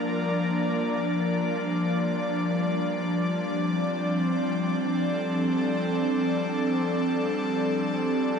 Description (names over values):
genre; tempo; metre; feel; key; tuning
ambient; free time; none; none; unclear; A4 = 440 Hz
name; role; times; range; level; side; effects
airy breathy pad; sustained chords; 0.0-8.4 s; F3 to D5; -24 LUFS; equal; chorus, shimmer reverb
bowed-like drone; drone; 0.1-8.4 s; G3; -35 LUFS; left 4 dB; none
room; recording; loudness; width
wet concert hall reverb, RT60 2.3 s; dark, warm production; -24 LUFS; side -6 dB against mid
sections
0.0-8.4 A section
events
none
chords
0.0 Bb; 2.9 Dm7